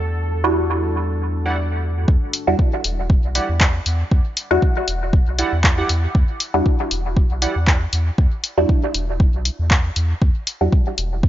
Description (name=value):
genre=dub techno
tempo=118 BPM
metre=4/4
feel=swing 54% on 16ths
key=E minor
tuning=A4 = 440 Hz
part: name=deep dark ambient pad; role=sustained chords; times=0.0-2.1 s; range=G3 to A4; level=-33 LUFS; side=left 2 dB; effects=chorus, built-in reverb, sidechain pumping
part: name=soft dub sub bass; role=bass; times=0.0-11.3 s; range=E1 to E2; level=-21 LUFS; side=equal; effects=sidechain pumping
part: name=bubbling stepped-filter texture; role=texture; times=0.0-2.1 s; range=F#4 to A4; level=-34 LUFS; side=right 2 dB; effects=chorus, built-in reverb, sidechain pumping
part: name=filtered dub chord stab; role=stabs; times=0.4-10.8 s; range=G3 to F#4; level=-22 LUFS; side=equal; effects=phaser, cassette tape, sidechain pumping, dub echo
part: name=warbly lo-fi synth keys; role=riff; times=1.5-7.5 s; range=E4 to F#5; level=-27 LUFS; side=right 3 dB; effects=chorus, sidechain pumping, dub echo
part: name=electronic kick drum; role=drums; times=2.1-11.3 s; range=none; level=-16 LUFS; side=equal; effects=none
part: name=punchy analog drum machine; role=drums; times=2.3-11.1 s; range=handclaps, hi-hat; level=-20 LUFS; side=left 1 dB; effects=none
room=light reverb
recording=nothing above 7.5 kHz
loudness=-16 LUFS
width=side -13 dB against mid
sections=0.0-2.1 A section; 2.1-11.3 B section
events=filter sweep on synth stab 0.0-2.1, 2.1-11.3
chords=0.0 Em9